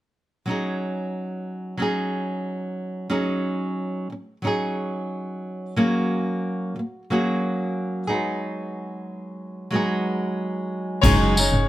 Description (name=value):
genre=acoustic pop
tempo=91 BPM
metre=4/4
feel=straight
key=unclear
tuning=A4 = 440 Hz
part: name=flamenco guitar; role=accompaniment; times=0.5-11.7 s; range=F#3 to G#4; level=-24 LUFS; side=right 1 dB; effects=none
part: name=warm upright piano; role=melody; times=11.0-11.6 s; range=C#5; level=-24 LUFS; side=left 4 dB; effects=none
part: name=clear baby grand piano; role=accompaniment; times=11.0-11.7 s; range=C#4 to D#5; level=-33 LUFS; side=left 6 dB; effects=none
part: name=warm double bass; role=bass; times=11.0-11.7 s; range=F#1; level=-20 LUFS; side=equal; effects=none
part: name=soft brush drum kit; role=drums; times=11.0-11.5 s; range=crash cymbal, kick drum, tambourine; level=-21 LUFS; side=left 1 dB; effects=none
room=light reverb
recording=none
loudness=-23 LUFS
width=side -15 dB against mid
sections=0.5-11.0 A section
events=none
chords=0.5 C#sus2/F#; 5.8 F#add9; 8.1 G#m7/F#; 11.0 C#sus2/F#